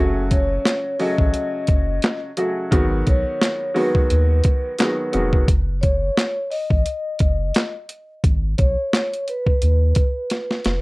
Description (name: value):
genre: hip hop, boom-bap hip-hop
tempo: 87 BPM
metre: 4/4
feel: swing 56% on 16ths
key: F# dorian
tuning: A4 = 439 Hz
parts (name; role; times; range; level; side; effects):
- warm upright piano; accompaniment; 0.0-5.5 s; C#3 to F#4; -23 LUFS; equal; high-pass filter, low-pass filter
- soft dub sub bass; bass; 0.0-10.8 s; E#1 to D#2; -20 LUFS; equal; transformer saturation
- vibraphone with soft mallets; melody; 0.3-10.8 s; B4 to D#5; -25 LUFS; equal; high-pass filter, low-pass filter
- boom bap sampler-style drum kit; drums; 0.3-10.8 s; handclaps, hi-hat, kick drum, snare drum; -19 LUFS; equal; none
room: light reverb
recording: worn, warbling old tape, cassette tape, warbly pitch drift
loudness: -17 LUFS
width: side -23 dB against mid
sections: 0.0-10.8 A section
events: drum fill 10.3-10.8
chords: 0.0 F#m; 2.7 G#m7; 5.5 F#5; 8.2 G#m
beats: 0.65 1.34 2.03 | 2.72 3.41 4.10 4.79 | 5.48 6.17 6.86 7.55 | 8.24 8.93 9.62 10.31